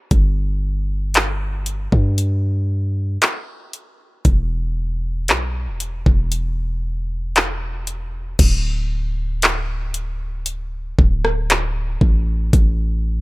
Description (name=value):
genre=contemporary R&B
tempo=58 BPM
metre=4/4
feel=straight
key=unclear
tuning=A4 = 440 Hz
part: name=warm 808-style bass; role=bass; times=0.1-13.2 s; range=D1 to G2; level=-20 LUFS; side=equal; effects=none
part: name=smooth R&B drum kit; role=drums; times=0.1-12.8 s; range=crash cymbal, handclaps, hi-hat, kick drum, rim click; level=-17 LUFS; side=equal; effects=none
room=little or no reverb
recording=none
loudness=-17 LUFS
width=side -22 dB against mid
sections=0.0-8.4 A section; 8.4-13.2 B section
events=none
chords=none